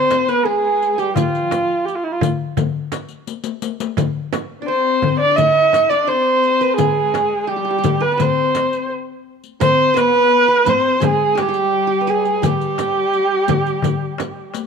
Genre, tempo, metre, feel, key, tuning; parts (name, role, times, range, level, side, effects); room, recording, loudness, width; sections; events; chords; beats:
Turkish makam ensemble; 85 BPM; 4/4; straight; G makam hicaz; A4 = 438 Hz
warm kamancheh; melody; 0.0-14.6 s; E4-38c to E5-39c; -16 LUFS; right 2 dB
qanun; second line; 0.0-14.5 s; F4 to E5-40c; -26 LUFS; right 12 dB
rich studio cello section; second line; 0.0-14.5 s; F3 to E4-40c; -25 LUFS; left 13 dB
darbuka; percussion; 0.1-14.7 s; -22 LUFS; left 8 dB
frame drum; percussion; 0.1-14.4 s; -25 LUFS; right 9 dB
riq; percussion; 0.1-14.7 s; -29 LUFS; left 12 dB
moderate echo chamber reverb, RT60 1.4 s; 1960s-style stereo with parts hard left and right; -15 LUFS; side -6 dB against mid
0.0-14.7 A section
drum fill 3.3-4.0
0.45 | 1.16 1.86 2.56 3.27 | 3.97 4.68 5.38 6.09 | 6.79 7.49 8.20 8.90 | 9.61 10.31 11.02 11.72 | 12.43 13.13 13.84 14.55